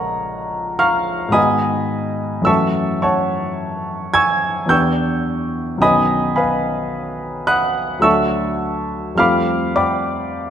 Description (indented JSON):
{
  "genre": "classical, impressionist solo piano",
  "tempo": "54 BPM",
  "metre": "3/4",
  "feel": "rubato",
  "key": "unclear",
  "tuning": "A4 = 439 Hz",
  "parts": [
    { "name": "clear grand piano", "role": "solo", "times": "0.0-10.5 s", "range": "A#1 to G#6", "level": "-16 LUFS", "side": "equal", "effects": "none" }
  ],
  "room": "wet scoring stage reverb, RT60 1.6 s",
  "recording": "none",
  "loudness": "-16 LUFS",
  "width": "side -9 dB against mid",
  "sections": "0.0-10.5 A section",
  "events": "none",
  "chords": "0.0 A#m7; 1.4 G#m7; 2.5 F#m7; 4.7 Em7; 5.8 Badd9; 8.1 Dadd9; 9.2 Fadd9"
}